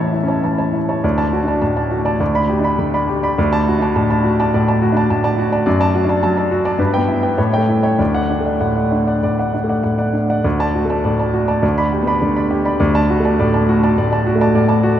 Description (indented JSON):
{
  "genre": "classical, virtuoso piano study",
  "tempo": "95-106 BPM",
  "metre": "4/4",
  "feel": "rubato",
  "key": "D major",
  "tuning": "A4 = 441 Hz",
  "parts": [
    { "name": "warm baby grand piano", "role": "solo", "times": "0.0-15.0 s", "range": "D2 to B5", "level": "-14 LUFS", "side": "equal", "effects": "none" }
  ],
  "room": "wet huge ambient reverb, RT60 7.4 s",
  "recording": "in a vast, echoing space",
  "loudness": "-14 LUFS",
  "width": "side -10 dB against mid",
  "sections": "0.0-10.4 A section; 10.4-15.0 A section",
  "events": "none",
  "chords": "0.0 A; 1.0 D; 2.2 G/D; 3.4 D; 5.7 D/F#; 6.8 Em/G; 7.4 A7; 8.0 D; 11.6 G/D; 12.8 D",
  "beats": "0.43 | 1.03 1.62 2.20 2.78 | 3.37 3.95 4.52 5.09 | 5.66 6.23 6.79 7.38 | 7.99 8.61 9.23 9.84 | 10.45 11.04 11.63 12.21 | 12.80 13.38 13.96 14.54"
}